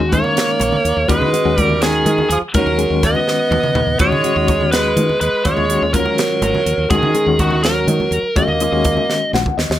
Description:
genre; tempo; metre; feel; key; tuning
electric jazz fusion; 82 BPM (dotted quarters); 6/8; straight; Eb minor; A4 = 441 Hz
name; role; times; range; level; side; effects
biting lead guitar; melody; 0.0-9.3 s; Gb4 to Eb5; -18 LUFS; equal; overdrive, slapback echo
reed electric piano; accompaniment; 0.0-9.8 s; Eb3 to Gb5; -22 LUFS; left 6 dB; fast tremolo
woody fretless electric bass; bass; 0.0-9.8 s; Ab1 to Eb3; -21 LUFS; equal; none
clear tenor saxophone; second line; 0.1-9.3 s; Eb3 to Cb4; -20 LUFS; right 4 dB; none
crisp fusion drum kit; drums; 0.1-9.8 s; hi-hat, kick drum, snare drum, toms; -21 LUFS; equal; none
congas; percussion; 0.1-9.6 s; none; -25 LUFS; right 2 dB; none
room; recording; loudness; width
light reverb; none; -13 LUFS; side -12 dB against mid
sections
0.0-9.8 A section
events
drum fill 3.3-4.0, 9.1-9.8; reed electric piano fill 9.1-9.8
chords
0.0 Eb7sus4; 1.1 Abm11/Eb; 4.0 Db9sus4/Eb; 6.9 Gb69/Eb; 8.4 Ebm7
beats
0.36 | 1.09 1.82 | 2.54 3.27 | 4.00 4.72 | 5.45 6.18 | 6.91 7.64 | 8.37 9.09

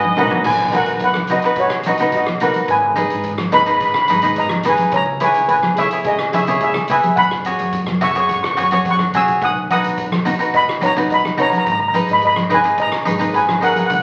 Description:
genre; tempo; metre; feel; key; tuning
calypso; 107 BPM; 4/4; straight; B major; A4 = 438 Hz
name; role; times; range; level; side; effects
steel pan; melody; 0.0-14.0 s; F#4 to E6; -18 LUFS; equal; none
bright horn section; second line; 0.0-0.5 s; D#5; -25 LUFS; equal; none
upright bass; bass; 0.0-14.0 s; G#1 to F#2; -32 LUFS; equal; none
congas; percussion; 0.0-13.9 s; none; -27 LUFS; equal; none
cavaquinho; accompaniment; 0.2-13.9 s; D#4 to E5; -22 LUFS; equal; none
swinging big-band drum kit; drums; 0.2-14.0 s; crash cymbal, hi-hat, kick drum, rim click, toms; -29 LUFS; equal; none
room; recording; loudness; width
wet large studio reverb, RT60 0.9 s; very old 78 rpm record, vinyl crackle; -16 LUFS; mono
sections
0.5-14.0 A section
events
drum fill 0.0-0.5, 8.7-9.4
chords
0.5 B; 2.7 G#m; 4.9 C#m7; 7.2 F#sus2; 9.4 B; 11.7 G#madd9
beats
| 0.46 1.02 1.58 2.14 | 2.70 3.26 3.82 4.38 | 4.94 5.50 6.06 6.62 | 7.18 7.74 8.30 8.86 | 9.43 9.98 10.54 11.11 | 11.66 12.22 12.79 13.35 | 13.90

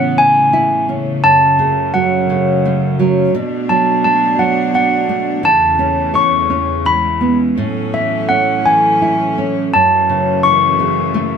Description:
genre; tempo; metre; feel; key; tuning
children's music, lullaby; 85 BPM; 3/4; rubato; A major; A4 = 440 Hz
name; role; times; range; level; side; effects
nylon-string guitar; accompaniment; 0.0-11.4 s; F#2 to C#5; -18 LUFS; right 2 dB; none
bright chamber string section; sustained chords; 0.0-11.4 s; E2 to D4; -20 LUFS; left 1 dB; none
handbells; melody; 0.2-11.4 s; E5 to C#6; -13 LUFS; equal; none
room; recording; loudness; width
wet small room ambience, RT60 0.5 s; band playing live in one room; -11 LUFS; side -7 dB against mid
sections
0.0-11.4 A section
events
none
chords
0.0 Aadd9; 1.2 F#m; 3.3 Bm7; 5.4 A/E; 6.9 E6; 7.6 A6; 9.7 F#m7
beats
0.53 | 1.24 1.94 2.64 | 3.34 4.04 4.74 | 5.45 6.15 6.86 | 7.57 8.29 9.02 | 9.74 10.44 11.14

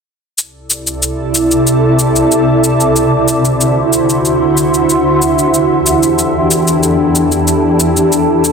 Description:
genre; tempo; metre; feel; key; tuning
sunset chillout; 93 BPM; 4/4; straight; C major; A4 = 440 Hz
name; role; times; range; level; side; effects
shimmering ambient pad; sustained chords; 0.8-8.5 s; C2 to D5; -10 LUFS; equal; chorus, built-in reverb
shaker; drums; 0.4-8.5 s; none; -16 LUFS; left 2 dB; none
room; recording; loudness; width
moderate lush hall reverb, RT60 2.3 s; dense, heavily limited modern master; -10 LUFS; side -5 dB against mid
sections
0.4-8.5 A section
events
none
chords
0.4 C69; 3.0 D9; 5.2 A7sus4/E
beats
| 0.37 1.02 1.66 2.31 | 2.95 3.60 4.25 4.89 | 5.54 6.18 6.83 7.47 | 8.12

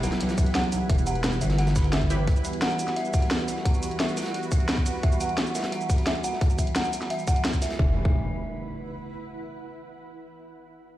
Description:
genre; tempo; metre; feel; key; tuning
dark technical drum and bass; 174 BPM; 4/4; straight; E minor; A4 = 438 Hz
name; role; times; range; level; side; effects
sweeping resonant pad; sustained chords; 0.0-8.0 s; E3 to G4; -32 LUFS; right 2 dB; chorus, sidechain pumping
dark detuned synth bell; arpeggios; 0.0-8.2 s; E5 to B5; -32 LUFS; equal; chorus, phaser, sidechain pumping, low-pass filter, digital delay
metallic wobble bass; bass; 0.0-2.3, 7.8-8.2 s; E1 to B1; -25 LUFS; equal; chorus, overdrive, sidechain pumping
crunchy breakbeat drum kit; drums; 0.0-7.8 s; hi-hat, snare drum; -38 LUFS; equal; none
drum and bass drum kit; drums; 0.0-7.7 s; hi-hat, shaker, snare drum; -30 LUFS; equal; none
granular cloud pad; texture; 0.0-9.1 s; E4 to B5; -38 LUFS; right 1 dB; built-in reverb, sidechain pumping
electronic kick drum; drums; 0.4-8.1 s; none; -22 LUFS; equal; none
orchestra-hit-like synth stab; stabs; 2.1-2.4 s; E4 to B4; -38 LUFS; right 1 dB; built-in reverb, digital delay
impact; sound effects; 7.8-9.2 s; none; -30 LUFS; equal; none
room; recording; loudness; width
light reverb; played on a big sound system in a bare room, large studio reverb; -22 LUFS; side -14 dB against mid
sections
0.0-7.8 A section; 7.8-9.2 B section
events
fade-out on ambient pad 0.0-7.8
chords
0.0 Em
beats
0.21 0.55 | 0.90 1.24 1.58 1.93 | 2.27 2.62 2.96 3.31 | 3.65 4.00 4.34 4.69 | 5.03 5.38 5.72 6.07 | 6.41 6.76 7.10 7.45 | 7.79 8.14 8.48 8.83

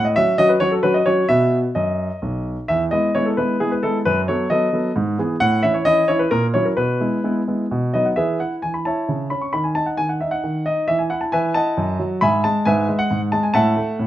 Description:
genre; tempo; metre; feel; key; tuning
classical-period piano sonatina; 133 BPM; 3/4; rubato; E major; A4 = 441 Hz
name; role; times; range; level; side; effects
warm grand piano; solo; 0.0-14.1 s; B1 to C#6; -17 LUFS; equal; none
room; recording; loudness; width
light reverb; dark, warm production; -17 LUFS; side -13 dB against mid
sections
0.0-8.2 A section; 8.2-14.1 B section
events
none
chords
0.0 F#m/A; 1.3 B; 2.7 E; 4.1 B7/F#; 5.0 E/G#; 5.4 A; 6.3 F#7/A#; 6.8 E/B; 7.7 B; 8.2 E; 9.1 A/C#; 9.5 N.C.; 10.9 E5; 11.8 D#dim/F#; 12.2 E/G#; 13.5 F#m7/A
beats
0.39 0.83 | 1.29 1.76 2.22 | 2.69 3.15 3.61 | 4.06 4.51 4.96 | 5.41 5.86 6.31 | 6.77 7.24 7.71 | 8.17 8.63 9.08 | 9.53 9.98 10.44 | 10.89 11.33 11.78 | 12.22 12.66 13.11 | 13.55 13.99

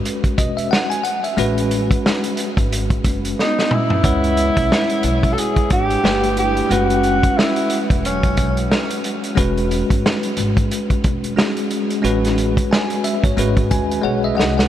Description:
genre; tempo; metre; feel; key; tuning
hip hop, jazz-hop; 90 BPM; 4/4; swing 59% on 16ths; unclear; A4 = 440 Hz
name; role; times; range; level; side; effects
bell-like tine electric piano; accompaniment; 0.0-14.7 s; G#3 to G#5; -20 LUFS; left 1 dB; fast stereo tremolo
vintage drum kit; drums; 0.1-14.7 s; hi-hat, kick drum, snare drum, toms; -20 LUFS; equal; none
upright bass; bass; 0.4-14.7 s; E1 to D#2; -23 LUFS; equal; none
breathy tenor saxophone; melody; 3.4-8.7 s; C#4 to A4; -20 LUFS; equal; tape echo
vibraphone with soft mallets; second line; 3.4-8.7 s; F#3 to F#4; -28 LUFS; right 6 dB; none
room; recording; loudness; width
moderate huge ambient reverb, RT60 8.0 s; dreamy mix soaked in reverb; -15 LUFS; side -11 dB against mid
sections
0.0-14.7 A section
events
drum fill 3.4-4.0, 14.0-14.7; tine electric piano fill 13.4-14.7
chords
0.0 E; 1.4 Amaj9; 4.0 C#m7; 6.0 Gadd9; 6.7 E; 12.0 Amaj9; 13.4 G#7sus4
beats
0.04 0.71 | 1.38 2.04 2.71 3.38 | 4.04 4.71 5.38 6.04 | 6.71 7.38 8.04 8.71 | 9.38 10.04 10.71 11.38 | 12.04 12.71 13.38 14.04

